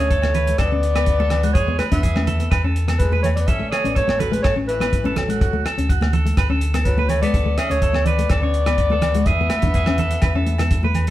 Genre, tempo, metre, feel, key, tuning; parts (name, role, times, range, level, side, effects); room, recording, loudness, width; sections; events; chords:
highlife guitar band; 124 BPM; 4/4; straight; A4 = 440 Hz
dark clarinet; melody; 0.0-10.9 s; A4 to E5; -23 LUFS; left 1 dB
warm tenor saxophone; second line; 0.0-11.0 s; E3 to C#4; -32 LUFS; left 2 dB
flamenco guitar; accompaniment; 0.0-11.1 s; G#3 to D4; -27 LUFS; left 3 dB
clean electric guitar; arpeggios; 0.0-11.1 s; F#4 to C#5; -27 LUFS; right 5 dB
fingered electric bass; bass; 0.0-11.1 s; A1 to E2; -21 LUFS; equal
cloth-damped thuddy drum kit; drums; 0.1-11.1 s; hi-hat, kick drum, rim click; -23 LUFS; equal
agogo bells; percussion; 0.2-11.1 s; -32 LUFS; left 1 dB
congas; percussion; 0.2-11.1 s; -27 LUFS; right 3 dB
moderate stone room reverb, RT60 1.2 s; band playing live in one room; -16 LUFS; side -14 dB against mid
0.0-11.1 A section
0.0 Bm7/D; 1.6 E; 3.5 A; 5.4 Bm7/D; 9.3 E